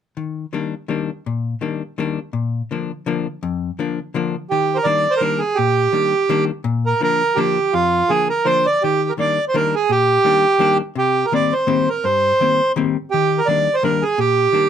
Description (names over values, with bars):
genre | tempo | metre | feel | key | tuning
musette waltz | 167 BPM | 3/4 | swing 55% on 8ths | Eb major | A4 = 441 Hz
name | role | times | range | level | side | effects
hollow-body jazz guitar | accompaniment | 0.2-14.7 s | F2 to D4 | -22 LUFS | left 6 dB | none
accordion | melody | 4.5-14.7 s | F4 to D5 | -16 LUFS | right 3 dB | none
room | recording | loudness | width
moderate small room ambience, RT60 0.5 s | close, detailed microphones | -16 LUFS | side -8 dB against mid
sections
0.2-4.5 A section; 4.5-14.7 B section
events
none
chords
0.2 Ebmaj7; 2.3 Bb; 4.5 Ebmaj7; 6.7 Bb; 8.8 Ebmaj7; 11.0 Cm7; 13.1 Ebmaj7